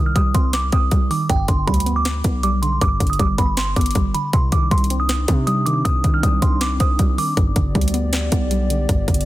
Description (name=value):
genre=hip hop, trap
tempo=158 BPM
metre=4/4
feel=half-time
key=C harmonic minor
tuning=A4 = 440 Hz
part: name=delicate synth tine bell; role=melody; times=0.0-7.3 s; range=G5 to F6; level=-23 LUFS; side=right 2 dB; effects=chorus, low-pass filter, ping-pong delay
part: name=soft round pluck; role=accompaniment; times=0.0-9.3 s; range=G2 to C4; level=-24 LUFS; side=right 2 dB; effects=chorus, low-pass filter
part: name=hard-hitting 808-style bass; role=bass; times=0.0-9.3 s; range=G1 to C3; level=-21 LUFS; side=equal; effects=none
part: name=trap drum kit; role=drums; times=0.2-9.3 s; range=hi-hat, kick drum, snare drum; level=-19 LUFS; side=equal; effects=none
part: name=dark analog pad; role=sustained chords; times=4.3-9.3 s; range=B3 to D5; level=-28 LUFS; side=equal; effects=chorus
room=digital ambience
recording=dense, heavily limited modern master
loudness=-16 LUFS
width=side -16 dB against mid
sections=0.0-9.3 A section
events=none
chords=0.0 Cm; 1.3 G; 4.3 Cmadd9; 7.4 G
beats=0.16 0.54 0.92 | 1.29 1.68 2.06 2.44 | 2.81 3.19 3.57 3.95 | 4.33 4.71 5.09 5.47 | 5.85 6.23 6.61 6.99 | 7.37 7.75 8.13 8.51 | 8.89